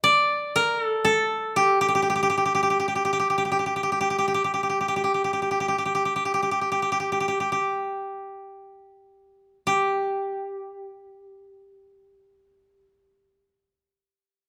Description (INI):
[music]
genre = japanese traditional, Japanese chamber music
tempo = 37-61 BPM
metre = 4/4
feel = rubato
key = G hirajoshi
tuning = A4 = 440 Hz
[part]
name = koto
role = solo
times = 0.0-13.4 s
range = G4 to D5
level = -24 LUFS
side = equal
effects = none
[sound]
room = light reverb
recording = none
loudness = -24 LUFS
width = mono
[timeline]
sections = 0.0-9.7 A section; 9.7-14.5 B section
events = slowing down 0.1-9.7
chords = none